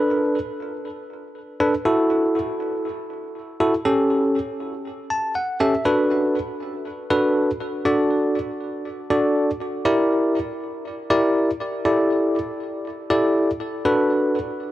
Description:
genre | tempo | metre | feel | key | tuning
pop | 120 BPM | 4/4 | straight | unclear | A4 = 439 Hz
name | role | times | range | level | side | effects
bell-like tine electric piano | solo | 0.0-14.4 s | C#4 to A5 | -20 LUFS | equal | fast stereo tremolo, tape echo
room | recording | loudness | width
light reverb | dry, gritty hardware recording | -19 LUFS | side -15 dB against mid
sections
0.0-5.9 A section; 5.9-14.7 B section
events
tine electric piano fill 4.9-5.9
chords
0.0 Bm7; 1.9 F#m7; 3.9 A7; 5.9 Bm7; 7.9 D; 9.9 Gm6; 11.9 A7sus4; 13.9 Bm7

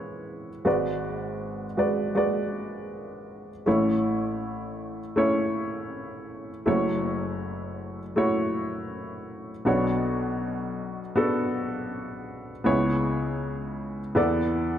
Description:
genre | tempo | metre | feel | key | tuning
folk | 80 BPM | 4/4 | straight | unclear | A4 = 440 Hz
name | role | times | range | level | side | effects
warm upright piano | solo | 0.0-14.8 s | F#1 to D5 | -25 LUFS | equal | none
room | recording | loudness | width
moderate scoring stage reverb, RT60 1.8 s | none | -24 LUFS | side -10 dB against mid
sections
0.0-3.7 A section; 3.7-14.8 B section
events
none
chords
0.0 C#m7/E; 0.7 G#m7b5; 3.7 A; 6.7 F#m7; 9.7 Bmadd9; 12.7 C#m7; 14.2 E7sus4

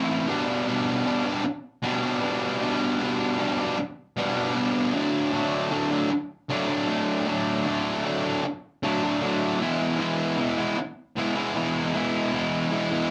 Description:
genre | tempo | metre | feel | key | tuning
rock | 77 BPM | 3/4 | straight | G major | A4 = 439 Hz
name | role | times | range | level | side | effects
fuzz guitar | solo | 0.0-13.1 s | B2 to E4 | -26 LUFS | equal | distortion
room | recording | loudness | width
wet small room reverb, RT60 0.5 s | band playing live in one room | -26 LUFS | mono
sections
0.0-13.1 A section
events
none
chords
0.3 G/B; 4.9 D; 9.6 E

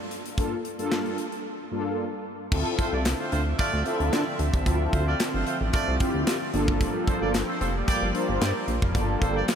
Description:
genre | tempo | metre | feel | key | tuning
early-eighties boogie funk | 112 BPM | 4/4 | straight | D minor | A4 = 440 Hz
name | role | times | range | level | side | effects
modern studio drum kit | drums | 0.1-9.6 s | crash cymbal, handclaps, hi-hat, kick drum, snare drum | -28 LUFS | equal | none
mellow synth brass | accompaniment | 0.4-9.4 s | G2 to C5 | -29 LUFS | left 1 dB | chorus, phaser
chorused pulse-width pad | sustained chords | 2.5-9.6 s | D3 to E5 | -32 LUFS | equal | none
chorused synth bass | bass | 2.5-9.4 s | F1 to D3 | -27 LUFS | equal | none
warm horn section | second line | 2.8-9.5 s | A3 to D5 | -31 LUFS | right 2 dB | diffuse ambient delay
room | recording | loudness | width
moderate huge ambient reverb, RT60 3.8 s | dreamy mix soaked in reverb | -23 LUFS | side -8 dB against mid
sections
0.0-2.5 A section; 2.5-9.6 B section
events
break 1.4-2.5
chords
0.0 Gm7; 2.5 Dm9; 6.5 Gm7

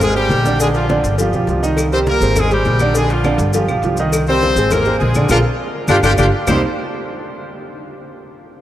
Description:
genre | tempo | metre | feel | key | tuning
latin, salsa | 204 BPM | 4/4 | straight | C minor | A4 = 440 Hz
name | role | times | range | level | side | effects
brilliant horn section | melody | 0.0-6.6 s | F3 to C5 | -19 LUFS | left 1 dB | none
warm grand piano | accompaniment | 0.0-6.6 s | C3 to Eb5 | -19 LUFS | right 2 dB | none
upright bass | bass | 0.0-6.6 s | G1 to C2 | -18 LUFS | equal | none
congas | percussion | 0.0-6.5 s | none | -25 LUFS | left 1 dB | none
cowbell and bongos | percussion | 0.0-6.5 s | none | -26 LUFS | left 5 dB | none
maracas | percussion | 0.0-6.5 s | none | -30 LUFS | left 3 dB | none
claves | percussion | 1.8-6.5 s | none | -29 LUFS | left 2 dB | none
room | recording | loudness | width
wet cathedral reverb, RT60 6.2 s | in a vast, echoing space | -13 LUFS | side -12 dB against mid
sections
0.0-6.5 A section; 6.5-7.7 B section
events
band accent 5.3-6.5; drum fill 5.6-6.5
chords
0.0 Ab; 0.6 Bb; 1.2 G7; 1.8 Cm7; 2.4 Ab; 2.9 Bb7; 3.5 G7; 4.1 Cm7; 4.7 Ab; 5.3 Bb7(no3); 5.9 G5; 6.5 Cm7

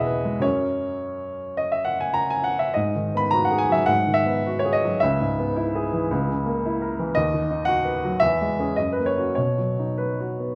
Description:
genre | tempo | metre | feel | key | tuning
classical, romantic character piece for solo piano | 97-118 BPM | 4/4 | rubato | B major | A4 = 440 Hz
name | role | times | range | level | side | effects
warm baby grand piano | solo | 0.0-10.6 s | C#2 to B5 | -23 LUFS | equal | none
room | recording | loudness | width
moderate recital hall reverb, RT60 1.3 s | none | -23 LUFS | mono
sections
0.0-10.6 A section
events
none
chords
0.4 F#; 2.8 G#m7; 5.0 C#m7; 6.1 A#dim/C#; 7.2 B/D#; 8.2 C#m/E; 8.8 F#; 9.4 B

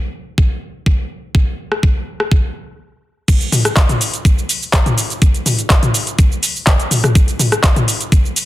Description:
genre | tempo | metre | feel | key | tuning
house | 124 BPM | 4/4 | straight | none | none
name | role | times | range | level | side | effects
electronic kick drum | drums | 0.4-8.2 s | none | -13 LUFS | equal | none
electro analog drum machine | drums | 1.7-8.5 s | cabasa, crash cymbal, handclaps, hi-hat, rim click, toms | -15 LUFS | left 1 dB | none
room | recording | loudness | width
little or no reverb | dense, heavily limited modern master | -13 LUFS | side -16 dB against mid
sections
0.0-3.3 A section; 3.3-8.5 B section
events
stop 2.8-3.3; drop 3.3-8.5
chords
none

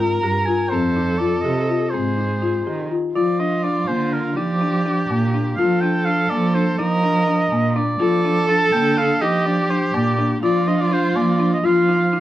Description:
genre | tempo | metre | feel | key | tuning
contemporary instrumental, chamber music in an uneven meter | 247 BPM (eighths) | 5/8 | straight | unclear | A4 = 440 Hz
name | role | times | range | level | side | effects
clear viola | second line | 0.0-12.2 s | F4 to Bb4 | -23 LUFS | right 2 dB | none
folk marimba with medium mallets | arpeggios | 0.0-12.2 s | Bb3 to G4 | -22 LUFS | left 4 dB | none
dark cello | bass | 0.0-12.2 s | F2 to F3 | -22 LUFS | right 2 dB | none
clear oboe | melody | 0.2-12.2 s | Bb4 to Bb5 | -23 LUFS | right 1 dB | none
room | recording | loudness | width
moderate studio ambience, RT60 0.4 s | worn, warbling old tape, cassette tape, warbly pitch drift | -17 LUFS | side -13 dB against mid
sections
0.0-3.1 A section; 3.1-12.2 B section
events
none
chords
0.0 Abmaj7(no3); 0.7 F7; 1.9 Ab; 3.1 Cmadd9; 4.4 Ebmaj7/F (rootless); 5.6 Bbmaj7/F (rootless); 6.8 Eb5/F; 8.0 Dmadd11; 9.2 Ebmaj7/F; 10.4 Bb/F (rootless); 11.6 F5

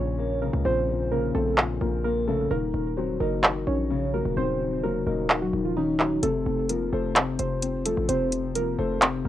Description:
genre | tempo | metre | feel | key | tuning
hip hop, trap | 129 BPM | 4/4 | half-time | Bb harmonic minor | A4 = 440 Hz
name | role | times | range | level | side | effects
muted felt-like synth keys | melody | 0.0-9.3 s | Eb3 to Db5 | -28 LUFS | right 2 dB | chorus, low-pass filter, cassette tape, analog delay
dark grand piano | accompaniment | 0.0-9.3 s | Bb2 to C5 | -28 LUFS | left 7 dB | low-pass filter, cassette tape
hard-hitting 808-style bass | bass | 0.0-9.3 s | Eb1 to Db2 | -30 LUFS | equal | none
booming analog drum machine | drums | 1.6-9.1 s | handclaps, hi-hat | -21 LUFS | right 1 dB | none
room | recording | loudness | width
light reverb | home recording on cassette | -23 LUFS | side -12 dB against mid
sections
0.0-9.3 A section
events
break 0.0-6.2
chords
0.0 Bbmadd9; 2.5 Ebm7; 6.2 F

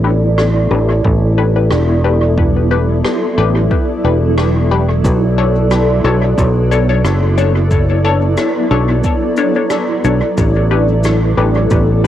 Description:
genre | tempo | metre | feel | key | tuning
ambient dub | 90 BPM | 4/4 | swing 54% on 16ths | unclear | A4 = 440 Hz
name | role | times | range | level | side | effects
granular cloud pad | sustained chords | 0.0-12.1 s | F#3 to D5 | -16 LUFS | right 1 dB | built-in reverb, cassette tape
filtered dub chord stab | stabs | 0.0-12.1 s | D4 to C#5 | -19 LUFS | left 7 dB | phaser, cassette tape, dub echo
fingered electric bass | bass | 0.0-12.1 s | E1 to B1 | -13 LUFS | equal | none
rim click and cabasa | drums | 0.4-12.1 s | none | -25 LUFS | equal | cassette tape, dub echo
electronic kick drum | drums | 1.0-11.9 s | none | -17 LUFS | equal | cassette tape
room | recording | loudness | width
wet booth ambience, RT60 0.2 s | home recording on cassette | -11 LUFS | side -11 dB against mid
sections
0.0-12.1 A section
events
none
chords
0.0 A9sus4; 5.0 Bm9; 10.4 A9sus4

